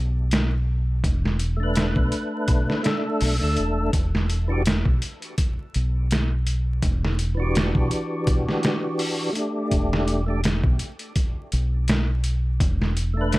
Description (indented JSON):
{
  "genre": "trip hop",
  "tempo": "83 BPM",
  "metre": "4/4",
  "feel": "swing 55% on 16ths",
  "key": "unclear",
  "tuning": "A4 = 441 Hz",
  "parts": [
    { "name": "deep dub fingered electric bass", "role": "bass", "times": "0.0-13.4 s", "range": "E1 to D2", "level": "-23 LUFS", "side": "equal", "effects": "none" },
    { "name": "trip hop sampler-style drum kit", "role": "drums", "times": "0.3-13.4 s", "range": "hi-hat, kick drum, snare drum", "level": "-23 LUFS", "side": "equal", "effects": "none" },
    { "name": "percussive tonewheel organ", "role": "accompaniment", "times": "1.6-13.4 s", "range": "E3 to B4", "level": "-26 LUFS", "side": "equal", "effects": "overdrive, chorus vibrato, slow rotary speaker, tremolo, vintage 12-bit sampler grit, tape echo" }
  ],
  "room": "little or no reverb",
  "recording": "vinyl crackle",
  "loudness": "-21 LUFS",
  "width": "side -19 dB against mid",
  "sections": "0.0-13.4 A section",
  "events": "none",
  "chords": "0.0 Asus4/E; 3.9 Em9; 9.7 A7sus4/E",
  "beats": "0.32 | 1.04 1.76 2.49 3.21 | 3.93 4.66 5.38 6.10 | 6.82 7.55 8.27 8.99 | 9.72 10.44 11.16 11.88 | 12.61 13.33"
}